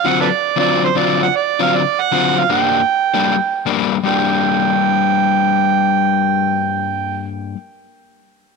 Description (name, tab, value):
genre	blues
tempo	156 BPM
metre	4/4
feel	swing 67% on 8ths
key	G harmonic minor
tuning	A4 = 440 Hz
part	overdriven harmonica	melody	0.0-7.3 s	A4 to G5	-16 LUFS	right 10 dB	none
part	overdriven semi-hollow guitar	riff	0.0-7.6 s	G2 to E#4	-17 LUFS	left 12 dB	none
room	moderate plate reverb, RT60 3.0 s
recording	1960s-style stereo with parts hard left and right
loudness	-14 LUFS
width	side -4 dB against mid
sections	0.0-4.0 A section; 4.0-7.1 B section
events	none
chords	0.0 D7#9; 2.5 Gm